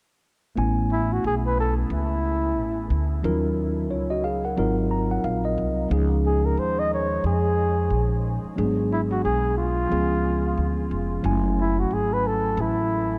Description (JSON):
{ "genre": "hip hop, jazz-hop", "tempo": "90 BPM", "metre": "4/4", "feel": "swing 61% on 16ths", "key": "unclear", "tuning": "A4 = 440 Hz", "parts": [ { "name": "mellow tine electric piano", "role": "accompaniment", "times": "0.6-13.2 s", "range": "E#3 to A#5", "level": "-28 LUFS", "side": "equal", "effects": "none" }, { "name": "upright bass", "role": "bass", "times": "0.6-13.2 s", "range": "E#1 to E#2", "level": "-28 LUFS", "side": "equal", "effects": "none" }, { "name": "breathy flugelhorn", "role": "melody", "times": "0.9-13.2 s", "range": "E4 to D#5", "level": "-29 LUFS", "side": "equal", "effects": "delay" } ], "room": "moderate huge ambient reverb, RT60 8.3 s", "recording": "dreamy mix soaked in reverb", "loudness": "-24 LUFS", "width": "mono", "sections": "0.6-13.2 A section", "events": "tine electric piano fill 4.6-5.9", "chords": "0.6 Amaj7; 3.2 D#m9; 4.6 G#13; 5.9 C#; 8.6 G#m7b5; 9.9 C#7; 11.2 F#m7", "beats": "| 0.57 1.24 1.91 2.57 | 3.24 3.90 4.57 5.24 | 5.91 6.57 7.24 7.91 | 8.57 9.24 9.90 10.57 | 11.24 11.90 12.57" }